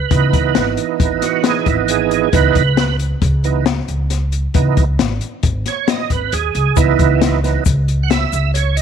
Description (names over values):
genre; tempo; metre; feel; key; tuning
progressive instrumental, band music in an uneven meter; 135 BPM; 5/4; straight; C# minor; A4 = 440 Hz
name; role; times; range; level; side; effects
overdriven tonewheel organ; accompaniment; 0.0-8.8 s; E3 to F#5; -17 LUFS; right 14 dB; chorus vibrato, slow rotary speaker
upright bass; bass; 0.1-8.8 s; G#1 to C#3; -17 LUFS; equal; none
open jazz drum kit; drums; 0.1-8.8 s; hi-hat, kick drum, snare drum; -18 LUFS; left 5 dB; none
egg shaker; percussion; 6.8-8.5 s; none; -29 LUFS; left 16 dB; none
room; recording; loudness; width
small room ambience; 1960s-style stereo with parts hard left and right; -13 LUFS; side -8 dB against mid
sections
0.0-8.8 A section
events
tonewheel organ solo 0.0-8.8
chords
0.0 C#m9